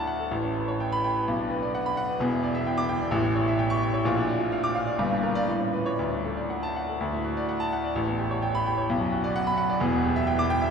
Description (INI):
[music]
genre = classical, virtuoso piano study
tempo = 129 BPM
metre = 2/4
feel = rubato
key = D major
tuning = A4 = 441 Hz
[part]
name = warm grand piano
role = solo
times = 0.0-10.7 s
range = E1 to D6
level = -24 LUFS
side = equal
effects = none
[sound]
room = wet cathedral reverb, RT60 6.6 s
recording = recorded in a church or concert hall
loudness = -24 LUFS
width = side -6 dB against mid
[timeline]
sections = 0.0-7.0 A section; 7.0-10.7 B section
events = none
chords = 0.3 A9; 1.3 Bm; 2.2 Em7; 3.1 A7; 4.1 Bb; 5.0 Gm; 5.5 Aadd9; 6.0 D; 8.0 A9; 8.9 Bm; 9.8 Em7